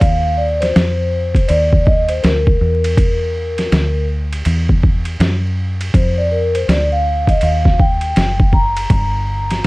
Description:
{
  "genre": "hip hop, jazz-hop",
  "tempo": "81 BPM",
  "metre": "4/4",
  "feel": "swing 63% on 16ths",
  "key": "unclear",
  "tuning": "A4 = 440 Hz",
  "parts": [
    { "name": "vibraphone with soft mallets", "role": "accompaniment", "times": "0.0-9.7 s", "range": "Bb4 to Bb5", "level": "-18 LUFS", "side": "equal", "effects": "none" },
    { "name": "deep dub fingered electric bass", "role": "bass", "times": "0.0-9.7 s", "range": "F#1 to F#2", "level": "-17 LUFS", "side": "equal", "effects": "none" },
    { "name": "boom bap sampler-style drum kit", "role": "drums", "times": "0.0-9.7 s", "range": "hi-hat, kick drum, ride cymbal, snare drum", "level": "-16 LUFS", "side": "equal", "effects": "overdrive" }
  ],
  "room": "little or no reverb",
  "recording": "dark, warm production, vinyl crackle",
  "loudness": "-13 LUFS",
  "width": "side -21 dB against mid",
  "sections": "0.0-9.7 A section",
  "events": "vibraphone solo 0.0-9.7",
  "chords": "0.0 Ebsus2; 2.6 Dsus2; 5.2 N.C.; 5.9 Fsus2; 8.9 Gm",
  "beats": "| 0.01 0.75 1.49 2.23 | 2.98 3.72 4.46 5.20 | 5.94 6.68 7.42 8.16 | 8.90 9.64"
}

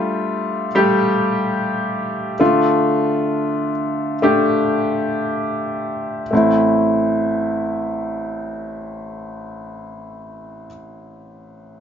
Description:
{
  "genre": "pop",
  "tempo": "54-77 BPM",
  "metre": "4/4",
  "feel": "straight",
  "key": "A minor",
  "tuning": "A4 = 440 Hz",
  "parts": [
    { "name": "clear baby grand piano", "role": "accompaniment", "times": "0.0-11.8 s", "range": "A1 to G4", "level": "-17 LUFS", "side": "equal", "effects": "none" }
  ],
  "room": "moderate studio reverb, RT60 0.5 s",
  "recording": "nothing above 7.7 kHz",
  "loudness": "-16 LUFS",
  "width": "side -8 dB against mid",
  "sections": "0.0-6.3 A section; 6.3-10.7 B section",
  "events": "slowing down 0.0-6.3",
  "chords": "0.0 Fadd9; 2.4 Dm; 6.3 Am",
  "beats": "0.74 1.56 | 2.40 3.28 4.22 5.24 | 6.32 7.42 8.52 9.62"
}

